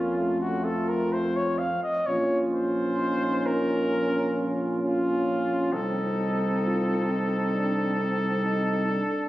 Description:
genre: classical, brass quintet.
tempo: 66 BPM.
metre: 4/4.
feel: rubato.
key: Bb minor.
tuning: A4 = 440 Hz.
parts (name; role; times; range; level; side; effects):
clear trumpet; melody; 0.0-9.3 s; F4 to F5; -28 LUFS; left 1 dB; none.
warm trumpet; second line; 0.0-9.1 s; Db4 to F4; -33 LUFS; right 1 dB; none.
clear French horn; accompaniment; 0.0-9.1 s; A3 to Db4; -31 LUFS; left 1 dB; none.
mellow trombone; accompaniment; 0.0-9.3 s; C4 to F4; -34 LUFS; right 1 dB; none.
dark tuba; bass; 0.0-9.0 s; Bb1 to F2; -29 LUFS; right 1 dB; none.
room: moderate concert hall reverb, RT60 2.3 s.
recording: recorded on a phone in the room, club reverb, compression.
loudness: -23 LUFS.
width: side -15 dB against mid.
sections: 0.0-9.3 A section.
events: none.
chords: 0.2 F; 2.1 Bbm; 5.7 Adim/C.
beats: 0.17 1.12 | 2.07 3.00 3.92 4.82 | 5.73 6.63 7.53 8.43.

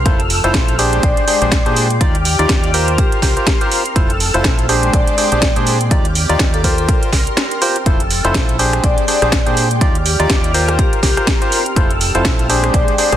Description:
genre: piano house.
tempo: 123 BPM.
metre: 4/4.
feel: swing 58% on 16ths.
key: unclear.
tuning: A4 = 440 Hz.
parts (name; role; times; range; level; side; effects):
analog string pad; sustained chords; 0.0-13.2 s; Ab3 to F6; -23 LUFS; left 1 dB; ensemble chorus, sidechain pumping.
deep dub fingered electric bass; bass; 0.0-13.2 s; F1 to Bb2; -19 LUFS; equal; sidechain pumping.
warbly tape-like pad; texture; 0.0-13.2 s; C4 to G5; -30 LUFS; equal; none.
percussive organ stab; riff; 0.1-13.2 s; D4 to D5; -18 LUFS; equal; chorus, sidechain pumping, dub echo.
electronic kick drum; drums; 0.1-12.9 s; none; -16 LUFS; equal; none.
house drum kit; drums; 0.1-13.2 s; hi-hat, rim click, snare drum; -19 LUFS; right 2 dB; none.
vibraphone with soft mallets; melody; 1.0-13.2 s; G4 to D5; -22 LUFS; left 3 dB; dub echo.
room: digital ambience.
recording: dense, heavily limited modern master.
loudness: -12 LUFS.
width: side -11 dB against mid.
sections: 0.0-13.2 A section.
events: none.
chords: 0.1 Fmaj7; 0.8 Bb13; 2.0 Ebmaj9; 3.0 C7sus4; 4.0 Fmaj7; 4.7 Bb13; 5.9 Ebmaj9; 6.9 C7sus4; 7.9 Fmaj7; 8.6 Bb13; 9.8 Ebmaj9; 10.8 C7sus4; 11.8 Fmaj7; 12.5 Bb13.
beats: | 0.06 0.54 1.03 1.52 | 2.01 2.50 2.98 3.47 | 3.96 4.45 4.93 5.42 | 5.91 6.40 6.89 7.37 | 7.86 8.35 8.84 9.32 | 9.81 10.30 10.79 11.28 | 11.76 12.25 12.74.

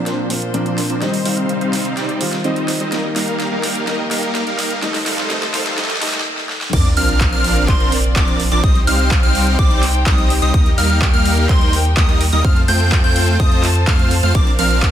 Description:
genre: EDM, festival progressive house.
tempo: 126 BPM.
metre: 4/4.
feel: straight.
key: Bb major.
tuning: A4 = 441 Hz.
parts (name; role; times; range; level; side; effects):
warm grand piano; accompaniment; 0.0-6.8 s; Bb2 to F4; -25 LUFS; left 1 dB; sidechain pumping, ping-pong delay.
dark studio string section; sustained chords; 0.0-14.9 s; Eb2 to A5; -25 LUFS; left 1 dB; sidechain pumping, low-pass filter.
supersaw chords; riff; 0.0-14.9 s; F3 to G5; -20 LUFS; right 1 dB; sidechain pumping, low-pass filter, ping-pong delay.
riser and sub drop; sound effects; 3.8-8.6 s; none; -27 LUFS; equal; none.
big-room dance drum kit; drums; 0.1-14.9 s; crash cymbal, handclaps, hi-hat, ride cymbal, snare drum; -23 LUFS; right 1 dB; overdrive, high-pass filter on hats, studio ambience, high-pass filter on snare, high-pass filter on cymbals.
plucky unison lead; arpeggios; 6.7-14.9 s; C6 to G6; -21 LUFS; equal; sidechain pumping, ping-pong delay.
saturated sub bass; bass; 6.7-14.9 s; Bb1 to F2; -18 LUFS; equal; sidechain pumping.
electronic kick drum; drums; 6.7-14.9 s; none; -15 LUFS; equal; overdrive, studio ambience.
room: light reverb, digital ambience.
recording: high-pass filter.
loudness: -14 LUFS.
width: side -10 dB against mid.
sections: 0.0-6.7 A section; 6.7-14.9 B section.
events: build-up 0.0-6.7; drum fill 0.0-6.3, 6.4-6.7; filter sweep on supersaw synth 0.0-6.7; filter sweep on string section 0.0-6.7; filter sweep 0.0-6.7; stop 6.3-6.7; drop 6.7-14.9; impact 6.7-8.6.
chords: 0.0 Bbadd9; 1.0 Cm; 2.9 Eb; 4.8 F; 6.7 Bbadd9; 8.6 Cm; 10.5 Eb; 12.4 F; 14.3 Bbadd9.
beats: 0.07 0.54 | 1.02 1.49 1.97 2.45 | 2.92 3.40 3.87 4.35 | 4.83 5.30 5.78 6.25 | 6.73 7.21 7.68 8.16 | 8.64 9.11 9.59 10.06 | 10.54 11.02 11.49 11.97 | 12.45 12.92 13.40 13.87 | 14.35 14.83.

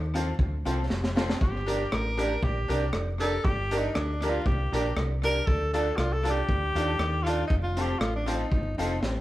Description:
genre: ska.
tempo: 118 BPM.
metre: 4/4.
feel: straight.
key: G minor.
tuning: A4 = 442 Hz.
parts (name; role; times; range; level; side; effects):
fingered electric bass; bass; 0.0-9.2 s; F1 to Eb2; -30 LUFS; equal; none.
tack piano; stabs; 0.1-9.0 s; C4 to Bb4; -33 LUFS; left 2 dB; none.
electric guitar at the edge of break-up; accompaniment; 0.2-8.9 s; C4 to D5; -34 LUFS; right 3 dB; tape echo.
crunchy breakbeat drum kit; drums; 0.2-9.1 s; hi-hat, kick drum, rim click, snare drum; -30 LUFS; equal; tape echo.
breathy tenor saxophone; melody; 1.4-9.2 s; C4 to Bb4; -31 LUFS; left 1 dB; none.
room: moderate large studio reverb, RT60 0.9 s.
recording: band playing live in one room, vinyl crackle.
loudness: -25 LUFS.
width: side -16 dB against mid.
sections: 0.0-9.2 A section.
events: tenor saxophone solo 0.0-9.2; drum fill 0.9-1.4, 9.0.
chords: 0.0 F; 1.4 Gm; 5.5 Dm; 7.5 F.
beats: 0.40 0.91 | 1.41 1.92 2.43 2.94 | 3.45 3.95 4.46 4.97 | 5.48 5.98 6.49 7.00 | 7.50 8.01 8.52 9.02.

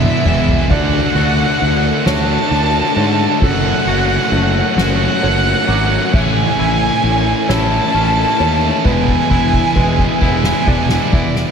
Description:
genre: post-rock.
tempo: 44 BPM (dotted quarters).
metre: 6/8.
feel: straight.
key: A major.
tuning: A4 = 440 Hz.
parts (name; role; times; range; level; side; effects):
dark violin; melody; 0.0-11.5 s; D5 to A5; -18 LUFS; right 1 dB; slapback echo.
felt-muted upright piano; arpeggios; 0.0-11.5 s; A4 to D6; -28 LUFS; right 4 dB; slapback echo.
twangy electric guitar; arpeggios; 0.0-11.5 s; E2 to F#4; -24 LUFS; left 6 dB; warbly pitch drift, slapback echo.
distorted electric guitar; riff; 0.0-11.5 s; A2 to F#4; -21 LUFS; right 10 dB; overdrive, slapback echo.
fuzz guitar; riff; 0.0-11.5 s; A2 to F#4; -21 LUFS; left 13 dB; distortion, slapback echo.
fuzz fingered electric bass; bass; 0.0-11.4 s; E1 to G#2; -18 LUFS; equal; overdrive.
soft-mallet drum kit; drums; 0.0-11.5 s; crash cymbal, kick drum, ride cymbal, snare drum, toms; -18 LUFS; right 1 dB; none.
room: moderate lush hall reverb, RT60 3.2 s.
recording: big arena sound.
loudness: -12 LUFS.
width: side -6 dB against mid.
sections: 0.0-11.5 A section.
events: drum fill 0.0-0.7, 8.9-11.5.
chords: 0.0 E7; 0.7 Dmaj7; 3.4 F#m; 6.1 Amaj7; 8.9 E7.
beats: | 0.70 2.06 | 3.42 4.77 | 6.13 7.49 | 8.86 10.22.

